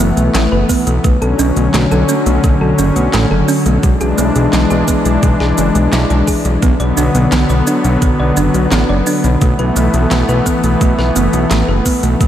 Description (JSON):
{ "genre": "synthwave", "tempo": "86 BPM", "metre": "4/4", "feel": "straight", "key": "unclear", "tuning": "A4 = 441 Hz", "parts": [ { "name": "warm analog pad", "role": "sustained chords", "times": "0.0-12.3 s", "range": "D3 to D4", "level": "-15 LUFS", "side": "left 1 dB", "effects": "chorus, sidechain pumping" }, { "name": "thumb-piano-like synth pluck", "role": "arpeggios", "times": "0.0-12.3 s", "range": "G#3 to D5", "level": "-18 LUFS", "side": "right 4 dB", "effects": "chorus, vintage 12-bit sampler grit, diffuse ambient delay" }, { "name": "fat analog bass", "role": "bass", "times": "0.0-12.3 s", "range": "F#1 to B1", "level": "-15 LUFS", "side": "equal", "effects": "sidechain pumping" }, { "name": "pop drum kit", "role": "drums", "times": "0.0-12.3 s", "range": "cabasa, handclaps, hi-hat, snare drum", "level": "-22 LUFS", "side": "equal", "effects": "studio reverb" }, { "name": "electronic kick drum", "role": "drums", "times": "0.7-12.3 s", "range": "none", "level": "-15 LUFS", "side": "equal", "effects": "overdrive, studio reverb" } ], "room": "moderate cathedral reverb, RT60 5.0 s", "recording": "dreamy mix soaked in reverb", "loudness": "-10 LUFS", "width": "side -10 dB against mid", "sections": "0.0-12.3 A section", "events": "none", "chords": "0.0 Asus2; 1.0 Dmaj7/B; 3.8 E7/B; 6.6 Bm; 9.4 Asus2/B" }